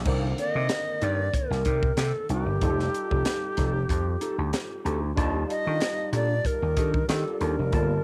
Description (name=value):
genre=polished 1980s jazz-funk pop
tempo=94 BPM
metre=4/4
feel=swing 54% on 16ths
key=unclear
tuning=A4 = 439 Hz
part: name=barky tine electric piano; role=accompaniment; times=0.0-8.0 s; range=D3 to A5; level=-38 LUFS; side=equal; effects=ensemble chorus, cassette tape
part: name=vintage slap bass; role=bass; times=0.0-8.0 s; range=F1 to Eb3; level=-30 LUFS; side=equal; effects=none
part: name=mellow electric guitar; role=riff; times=0.1-7.9 s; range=Bb3 to D5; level=-37 LUFS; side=equal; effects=analog chorus, cassette tape
part: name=crisp fusion drum kit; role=drums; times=0.1-7.9 s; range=crash cymbal, hi-hat, kick drum, snare drum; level=-32 LUFS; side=equal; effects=none
part: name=bright alto flute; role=melody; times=0.4-8.0 s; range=G4 to Eb5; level=-32 LUFS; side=equal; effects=cassette tape
part: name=group handclap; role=percussion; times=0.7-7.3 s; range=none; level=-47 LUFS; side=equal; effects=none
room=light reverb, studio reverb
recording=home recording on cassette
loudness=-26 LUFS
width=mono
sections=0.1-8.0 A section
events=none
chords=0.1 Cm9; 2.6 F9; 5.2 Ebmaj9#11